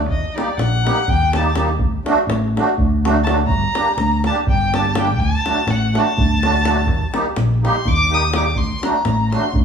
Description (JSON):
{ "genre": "balkan folk, Balkan wedding band", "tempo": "248 BPM (eighths)", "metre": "7/8", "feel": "straight", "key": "D phrygian dominant", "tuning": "A4 = 440 Hz", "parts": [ { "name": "fingered electric bass", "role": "bass", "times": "0.0-9.6 s", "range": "G1 to Eb2", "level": "-19 LUFS", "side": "equal", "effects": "none" }, { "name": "rich violin", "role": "second line", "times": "0.1-9.5 s", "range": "D5 to Eb6", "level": "-21 LUFS", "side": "left 2 dB", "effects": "none" }, { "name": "davul", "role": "percussion", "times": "0.1-9.6 s", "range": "none", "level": "-22 LUFS", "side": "equal", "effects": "none" }, { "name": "musette accordion", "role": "accompaniment", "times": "0.3-9.5 s", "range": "F#3 to G4", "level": "-21 LUFS", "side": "right 2 dB", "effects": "none" } ], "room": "wet large studio reverb, RT60 1.1 s", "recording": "band playing live in one room", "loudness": "-15 LUFS", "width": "side -7 dB against mid", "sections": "0.0-9.6 A section", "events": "violin solo 0.0-9.6", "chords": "0.1 Eb; 1.8 D; 3.5 Gm; 5.2 D; 6.9 Eb; 8.5 D" }